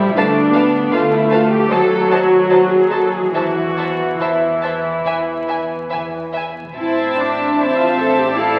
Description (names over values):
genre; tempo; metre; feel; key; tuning
classical, slow romantic movement for string orchestra; 69-80 BPM; 4/4; rubato; A minor; A4 = 440 Hz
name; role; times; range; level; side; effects
warm studio viola section; accompaniment; 0.0-8.6 s; E3 to E4; -19 LUFS; equal; none
rich symphonic cello section; bass; 0.0-8.6 s; C4 to A4; -22 LUFS; equal; none
warm symphonic double bass section; bass; 0.0-8.6 s; A1 to E2; -32 LUFS; equal; none
warm studio violin section; melody; 0.2-8.6 s; G#5 to A5; -27 LUFS; equal; none
warm studio violin section; second line; 0.2-8.6 s; B4 to F5; -26 LUFS; equal; none
room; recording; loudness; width
wet concert hall reverb, RT60 2.1 s; very old 78 rpm record, vinyl crackle; -16 LUFS; mono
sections
0.0-8.6 A section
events
none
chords
0.2 Bm7b5/D; 1.7 D#dim; 3.3 N.C.; 6.8 Am